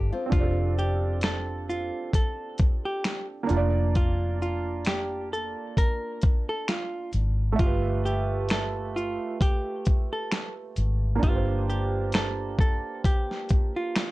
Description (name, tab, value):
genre	lo-fi hip hop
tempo	66 BPM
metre	4/4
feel	swing 55% on 16ths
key	F major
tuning	A4 = 440 Hz
part	nylon-string guitar	second line	0.0-0.6 s	C4 to G4	-35 LUFS	left 4 dB	tape echo
part	felt-muted upright piano	accompaniment	0.0-14.1 s	A3 to E5	-32 LUFS	right 5 dB	none
part	vintage muted fingered electric bass	bass	0.0-12.8 s	F1 to Ab1	-27 LUFS	equal	none
part	hollow-body jazz guitar	melody	0.3-14.1 s	F4 to Bb4	-32 LUFS	equal	none
part	dusty soul sampler-style drum kit	drums	0.3-14.1 s	finger snaps, hi-hat, kick drum, shaker, snare drum	-24 LUFS	equal	vintage 12-bit sampler grit
room	light reverb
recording	dark, warm production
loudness	-24 LUFS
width	side -18 dB against mid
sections	0.3-14.1 A section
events	none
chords	0.3 F6; 3.5 Bb/F; 7.6 G13; 11.2 C9sus4/G